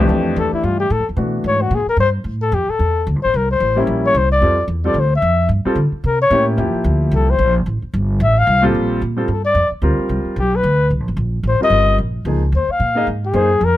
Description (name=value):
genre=jazz, small-group swing and bop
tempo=222 BPM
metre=4/4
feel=swing 58% on 8ths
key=F major, Bb major from 8.7 s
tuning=A4 = 440 Hz
part: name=warm grand piano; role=accompaniment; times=0.0-1.7, 3.8-13.5 s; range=F2 to Eb5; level=-19 LUFS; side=equal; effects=none
part: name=upright bass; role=bass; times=0.0-13.8 s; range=G1 to D3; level=-18 LUFS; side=equal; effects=none
part: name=mellow flugelhorn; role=melody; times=0.4-13.8 s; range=E4 to F5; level=-16 LUFS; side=left 3 dB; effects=none
room=little or no reverb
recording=close, detailed microphones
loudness=-14 LUFS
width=side -14 dB against mid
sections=0.1-8.7 A section; 8.7-13.8 A section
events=flugelhorn solo 0.1-13.8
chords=0.1 Fmaj7; 1.2 Bm7; 1.7 Gm; 2.3 A5; 3.3 C7b9; 4.4 Fmaj7; 5.0 Dmadd9; 5.5 G5; 6.0 C7b9; 6.6 Fmaj7; 8.7 Bbmaj9; 9.8 C9sus4; 10.4 Bm; 10.9 Cm7; 12.0 Bbm7; 12.5 Ebsus2; 13.1 Abadd9